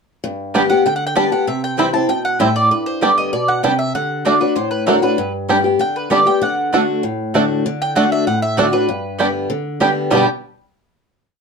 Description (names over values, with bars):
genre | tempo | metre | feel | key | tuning
bluegrass | 194 BPM | 4/4 | straight | G major | A4 = 438 Hz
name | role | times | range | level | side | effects
picked old ladder-braced acoustic guitar | accompaniment | 0.2-10.2 s | G2 to G4 | -18 LUFS | left 2 dB | none
bluegrass banjo | arpeggios | 0.5-10.3 s | G3 to G4 | -18 LUFS | right 4 dB | none
mandolin | stabs | 0.5-10.2 s | A3 to G5 | -20 LUFS | right 3 dB | none
mandolin | melody | 0.7-10.3 s | Bb4 to B5 | -19 LUFS | right 1 dB | none
room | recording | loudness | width
moderate studio reverb, RT60 0.5 s | dark, warm production | -14 LUFS | side -5 dB against mid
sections
0.2-10.1 A section; 10.1-11.3 final chord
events
none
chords
0.2 G; 1.5 C; 2.7 G; 3.9 D; 5.2 G; 6.4 D; 8.9 G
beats
| 0.23 0.54 0.85 1.16 | 1.47 1.78 2.09 2.40 | 2.71 3.02 3.33 3.63 | 3.94 4.25 4.56 4.87 | 5.18 5.49 5.80 6.11 | 6.42 6.73 7.04 7.34 | 7.65 7.96 8.27 8.57 | 8.88 9.19 9.50 9.81 | 10.11